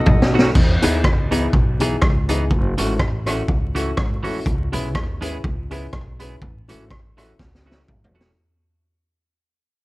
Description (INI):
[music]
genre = ska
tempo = 123 BPM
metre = 4/4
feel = swing 55% on 8ths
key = E major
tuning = A4 = 440 Hz
[part]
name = clear horn section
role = melody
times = 0.0-0.5 s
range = F#4 to D#5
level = -29 LUFS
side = left 2 dB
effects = slapback echo
[part]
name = upright bass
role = bass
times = 0.1-8.3 s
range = E1 to E2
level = -24 LUFS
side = equal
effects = none
[part]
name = raw garage drum kit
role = drums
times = 0.1-8.3 s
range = crash cymbal, hi-hat, kick drum, rim click, snare drum, toms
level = -19 LUFS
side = equal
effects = none
[part]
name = clean electric guitar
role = accompaniment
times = 0.3-8.3 s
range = E3 to G#4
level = -29 LUFS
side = right 4 dB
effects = none
[part]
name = dark upright piano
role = stabs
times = 0.3-8.3 s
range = B3 to B4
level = -25 LUFS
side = left 2 dB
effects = none
[sound]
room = little or no reverb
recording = vinyl crackle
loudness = -17 LUFS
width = side -21 dB against mid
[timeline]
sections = 0.6-8.4 A section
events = drum fill 0.0-0.6, 7.4-8.4; fade-out 0.6-8.4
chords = 0.0 B7; 0.6 Emaj7; 2.5 F#m7; 4.5 C#m7; 6.4 A6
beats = 0.06 | 0.55 1.04 1.53 2.02 | 2.51 3.00 3.48 3.97 | 4.46 4.95 5.44 5.93 | 6.41 6.90 7.39 7.88